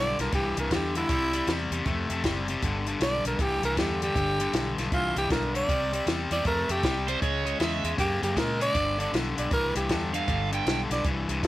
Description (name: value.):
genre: electric blues shuffle.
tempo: 157 BPM.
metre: 4/4.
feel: swing 63% on 8ths.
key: G mixolydian.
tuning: A4 = 442 Hz.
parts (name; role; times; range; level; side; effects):
growling tenor saxophone; melody; 0.0-11.5 s; E4 to D5; -28 LUFS; right 1 dB; none.
cranked stack guitar; riff; 0.0-11.5 s; G2 to A#3; -30 LUFS; left 3 dB; overdrive.
vintage muted fingered electric bass; bass; 0.0-11.5 s; F#1 to A#2; -33 LUFS; right 1 dB; none.
compact cocktail drum kit; drums; 0.2-11.5 s; hi-hat, kick drum, snare drum; -30 LUFS; equal; none.
overdriven slide guitar; second line; 7.1-10.8 s; C5 to G5; -30 LUFS; right 9 dB; none.
room: light reverb.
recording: none.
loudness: -24 LUFS.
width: side -15 dB against mid.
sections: 0.0-11.5 A section.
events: none.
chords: 0.0 G; 1.1 C; 2.6 G; 5.7 C; 7.2 C#m6; 8.8 G.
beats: 0.33 0.71 | 1.10 1.48 1.86 2.24 | 2.63 3.01 3.39 3.77 | 4.16 4.54 4.92 5.31 | 5.69 6.07 6.46 6.84 | 7.22 7.60 7.99 8.37 | 8.75 9.14 9.52 9.90 | 10.29 10.67 11.05 11.43.